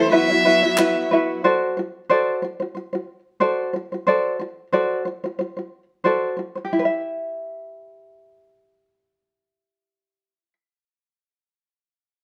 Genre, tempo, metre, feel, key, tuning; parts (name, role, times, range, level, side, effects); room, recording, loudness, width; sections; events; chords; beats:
acoustic pop; 91 BPM; 4/4; swing 55% on 16ths; A4 = 440 Hz
warm violin; melody; 0.0-1.1 s; C5 to E5; -22 LUFS; equal
tenor ukulele; accompaniment; 0.0-10.5 s; E4 to E5; -22 LUFS; equal
rich studio string section; sustained chords; 0.0-1.4 s; E3 to F#4; -33 LUFS; equal
group handclap; percussion; 0.8-0.9 s; -28 LUFS; equal
moderate studio reverb, RT60 0.7 s; -22 LUFS; mono
0.0-1.4 A section; 1.4-6.7 B section; 6.7-9.3 C section
0.1 Bsus4; 1.4 D7; 6.7 Em
0.12 0.78 | 1.44 2.09 2.75 3.41 | 4.07 4.73 5.39 6.05 | 6.71 7.37 8.03 8.69